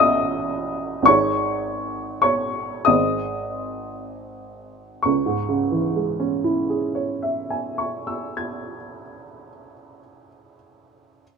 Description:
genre	classical, romantic nocturne for solo piano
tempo	25-39 BPM (dotted quarters)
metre	6/8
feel	rubato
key	C# minor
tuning	A4 = 440 Hz
part	warm upright piano	solo	0.0-11.2 s	G#1 to G#6	-20 LUFS	equal	none
room	light reverb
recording	minimal, uncompressed stereo recording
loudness	-20 LUFS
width	side -5 dB against mid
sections	0.0-5.1 A section; 5.1-9.1 B section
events	slowing down 0.0-5.1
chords	0.0 F#m/A; 1.1 G#sus4; 2.9 G#; 5.1 C#m

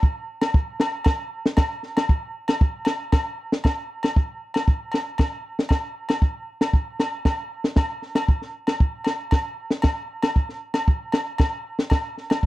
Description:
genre	highlife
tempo	116 BPM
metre	4/4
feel	straight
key	none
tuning	none
part	compact cocktail drum kit	drums	0.0-12.5 s	kick drum, snare drum	-19 LUFS	equal	none
part	agogo bells	percussion	0.4-12.4 s	none	-29 LUFS	equal	none
room	little or no reverb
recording	dry, close 1970s-style studio recording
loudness	-21 LUFS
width	side -17 dB against mid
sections	0.0-3.6 A section; 3.6-12.5 B section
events	none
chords	none

